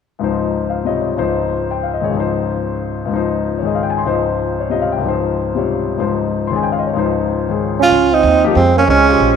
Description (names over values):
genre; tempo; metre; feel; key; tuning
modal jazz; 187 BPM; 3/4; swing 63% on 8ths; Db lydian; A4 = 441 Hz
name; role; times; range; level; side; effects
warm concert grand piano; accompaniment; 0.2-9.4 s; Db2 to C6; -17 LUFS; left 5 dB; none
warm tenor saxophone; melody; 7.8-9.4 s; C4 to F4; -11 LUFS; right 2 dB; slapback echo
warm trombone; second line; 7.8-9.4 s; Ab3 to Db4; -16 LUFS; right 12 dB; none
upright bass; bass; 7.9-9.4 s; Bb1 to F2; -17 LUFS; right 2 dB; none
room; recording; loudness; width
moderate plate reverb, RT60 3.3 s; 1960s-style stereo; -14 LUFS; side -7 dB against mid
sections
0.2-7.9 A section; 7.9-9.4 B section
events
none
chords
0.2 Dbmaj9